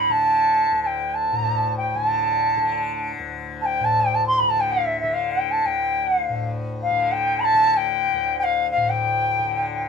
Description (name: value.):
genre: indian classical, Hindustani.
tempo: free time.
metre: none.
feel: none.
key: unclear.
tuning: A4 = 440 Hz.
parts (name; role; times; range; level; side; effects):
bright reedy bansuri; melody; 0.0-9.9 s; E5 to C6; -19 LUFS; equal; none.
tanpura; drone; 0.0-9.9 s; D2 to D3; -28 LUFS; left 3 dB; none.
room: moderate studio reverb, RT60 0.5 s.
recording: minimal, uncompressed stereo recording.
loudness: -19 LUFS.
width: side -6 dB against mid.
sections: 0.0-9.9 A section.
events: none.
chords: none.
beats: free time.